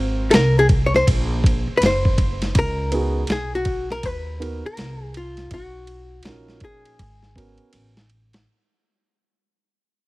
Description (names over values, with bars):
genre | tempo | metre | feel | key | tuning
hip hop, jazz-hop | 81 BPM | 4/4 | swing 62% on 16ths | unclear | A4 = 440 Hz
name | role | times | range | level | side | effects
archtop guitar, miked and amplified | melody | 0.0-8.1 s | E#4 to C#5 | -22 LUFS | left 1 dB | none
dark concert grand piano | accompaniment | 0.0-7.9 s | B3 to A#4 | -29 LUFS | right 2 dB | none
upright bass | bass | 0.0-8.4 s | F#1 to D#2 | -24 LUFS | equal | none
dusty soul sampler-style drum kit | drums | 0.3-8.5 s | hi-hat, kick drum, ride cymbal, snare drum | -20 LUFS | equal | none
room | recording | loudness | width
little or no reverb | heavily compressed radio sound | -17 LUFS | side -20 dB against mid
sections
0.0-8.5 A section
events
fade-out 0.0-8.5; drum fill 7.7-8.5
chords
0.0 G#13 (rootless); 2.5 C#9sus4; 5.5 Bmaj7; 7.0 G#m11